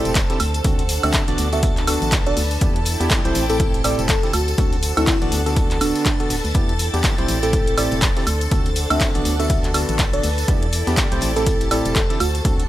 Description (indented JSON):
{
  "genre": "piano house",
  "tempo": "122 BPM",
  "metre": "4/4",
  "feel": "swing 59% on 16ths",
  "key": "unclear",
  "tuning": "A4 = 441 Hz",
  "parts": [
    { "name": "bell-like FM electric piano", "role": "melody", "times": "0.0-12.7 s", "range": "D4 to E5", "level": "-26 LUFS", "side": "right 1 dB", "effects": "chorus, tape echo" },
    { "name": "string machine, violins", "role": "sustained chords", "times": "0.0-12.7 s", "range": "A4 to A5", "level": "-29 LUFS", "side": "equal", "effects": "ensemble chorus, sidechain pumping" },
    { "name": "percussive organ stab", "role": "riff", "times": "0.0-12.6 s", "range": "A2 to D5", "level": "-24 LUFS", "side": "equal", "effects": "chorus, sidechain pumping, tape echo" },
    { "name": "dark studio string section", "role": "texture", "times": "0.0-12.7 s", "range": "C4 to C6", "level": "-31 LUFS", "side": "right 1 dB", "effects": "sidechain pumping" },
    { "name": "organ-like FM bass", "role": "bass", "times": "0.1-12.7 s", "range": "D1 to E2", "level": "-24 LUFS", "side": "equal", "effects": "sidechain pumping" },
    { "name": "punchy analog drum machine", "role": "drums", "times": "0.1-12.7 s", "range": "handclaps, hi-hat, woodblock", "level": "-24 LUFS", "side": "right 1 dB", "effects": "none" },
    { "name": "tambourine", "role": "percussion", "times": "0.1-12.6 s", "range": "none", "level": "-33 LUFS", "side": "left 4 dB", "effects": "none" },
    { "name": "electronic kick drum", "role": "drums", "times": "0.2-12.6 s", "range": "none", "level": "-20 LUFS", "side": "equal", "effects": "none" },
    { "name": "warm soul drum kit", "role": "drums", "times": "0.2-12.7 s", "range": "hi-hat, snare drum", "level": "-35 LUFS", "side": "equal", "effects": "none" }
  ],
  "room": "small room reverb",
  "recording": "none",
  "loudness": "-16 LUFS",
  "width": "side -14 dB against mid",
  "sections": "0.0-12.7 A section",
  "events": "none",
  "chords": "0.4 D7; 1.4 Bm7/D; 2.6 Em7; 3.4 Am7; 4.3 D7; 5.3 Bm7/D; 6.5 Em7; 7.3 Am7; 8.3 D7; 9.3 Bm7/D; 10.5 Em7; 11.2 Am7",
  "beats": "0.15 | 0.65 1.14 1.63 2.12 | 2.61 3.11 3.60 4.09 | 4.58 5.07 5.57 6.06 | 6.55 7.04 7.53 8.02 | 8.52 9.01 9.50 9.99 | 10.48 10.97 11.47 11.96 | 12.45"
}